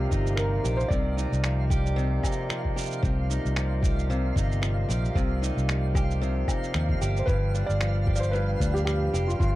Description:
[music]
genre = folktronica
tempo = 113 BPM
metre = 4/4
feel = swing 56% on 16ths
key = C minor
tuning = A4 = 438 Hz
[part]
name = felt-muted upright piano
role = melody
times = 0.0-2.4, 7.2-9.6 s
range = F4 to D5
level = -31 LUFS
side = equal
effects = tape echo
[part]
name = hand-pumped harmonium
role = sustained chords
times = 0.0-9.6 s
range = C3 to F5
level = -37 LUFS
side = right 2 dB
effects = stereo widening
[part]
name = picked steel-string acoustic guitar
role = arpeggios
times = 0.0-9.6 s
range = G2 to G4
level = -31 LUFS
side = left 1 dB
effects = tape echo
[part]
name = fingered electric bass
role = bass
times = 0.0-9.6 s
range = F1 to Eb2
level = -26 LUFS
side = equal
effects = none
[part]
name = twinkling granular texture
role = texture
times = 0.0-9.6 s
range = F5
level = -40 LUFS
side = right 2 dB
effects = built-in reverb
[part]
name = electronic kick drum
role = drums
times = 0.1-9.5 s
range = none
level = -27 LUFS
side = equal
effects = none
[part]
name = electronic shaker, finger snaps and woodblock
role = drums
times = 0.1-9.5 s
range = none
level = -35 LUFS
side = right 1 dB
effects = none
[sound]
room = little or no reverb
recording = dry, close 1970s-style studio recording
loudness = -23 LUFS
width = side -16 dB against mid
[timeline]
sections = 0.0-9.6 A section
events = none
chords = 0.0 Cm11; 7.3 G7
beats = 0.38 | 0.91 1.44 1.97 2.50 | 3.03 3.56 4.09 4.62 | 5.16 5.69 6.22 6.75 | 7.28 7.81 8.34 8.87 | 9.40

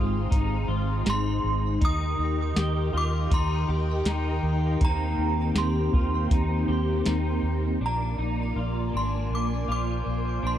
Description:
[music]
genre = dream pop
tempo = 80 BPM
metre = 4/4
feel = straight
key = Eb major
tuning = A4 = 438 Hz
[part]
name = synth chime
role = melody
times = 0.0-10.6 s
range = Bb5 to Eb6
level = -33 LUFS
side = right 2 dB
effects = ensemble chorus, phaser, tremolo, digital delay
[part]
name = ensemble organ-string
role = sustained chords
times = 0.0-10.6 s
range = Eb3 to D5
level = -30 LUFS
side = right 1 dB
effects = ensemble chorus
[part]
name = electric guitar through a small old amp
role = arpeggios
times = 0.0-10.6 s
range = D4 to G4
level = -33 LUFS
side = left 4 dB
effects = ensemble chorus, digital delay
[part]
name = vintage muted fingered electric bass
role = bass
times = 0.0-10.6 s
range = Ab1 to Eb2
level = -27 LUFS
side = equal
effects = none
[part]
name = soft vintage rhythm box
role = drums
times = 0.3-7.2 s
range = hi-hat, kick drum, snare drum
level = -24 LUFS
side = equal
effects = none
[part]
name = drifting glass-harmonics texture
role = texture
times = 3.6-10.6 s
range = C5 to C6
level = -43 LUFS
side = equal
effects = chorus, built-in reverb, digital delay
[sound]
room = light reverb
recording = dark, warm production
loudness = -23 LUFS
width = side -10 dB against mid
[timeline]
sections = 0.0-7.8 A section; 7.8-10.6 B section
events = none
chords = 0.0 Ab; 1.8 Eb; 4.8 Eb6; 7.8 Bb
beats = 0.31 1.06 | 1.81 2.56 3.31 4.06 | 4.81 5.56 6.31 7.06 | 7.81 8.56 9.31 10.06

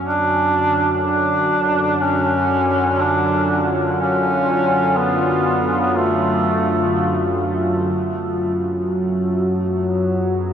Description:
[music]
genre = ambient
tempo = 61 BPM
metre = 4/4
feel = straight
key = unclear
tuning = A4 = 440 Hz
[part]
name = warm duduk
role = melody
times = 0.0-10.5 s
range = A3 to D4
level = -19 LUFS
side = right 1 dB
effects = tape echo
[part]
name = sweeping resonant pad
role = sustained chords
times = 0.0-10.5 s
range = D3 to G#4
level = -23 LUFS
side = equal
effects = chorus
[part]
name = dark baby grand piano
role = arpeggios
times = 0.0-2.5 s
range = none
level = barely audible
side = none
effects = none
[part]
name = analog drone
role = drone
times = 0.0-10.5 s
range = F#2 to F#3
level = -22 LUFS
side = left 1 dB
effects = chorus
[sound]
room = wet huge ambient reverb, RT60 7.2 s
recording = none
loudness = -16 LUFS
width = side -8 dB against mid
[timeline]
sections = 0.0-7.9 A section; 7.9-10.5 A section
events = none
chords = 0.1 Dm; 7.9 F#madd9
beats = | 0.05 1.04 2.02 3.00 | 3.99 4.97 5.96 6.94 | 7.92 8.91 9.89

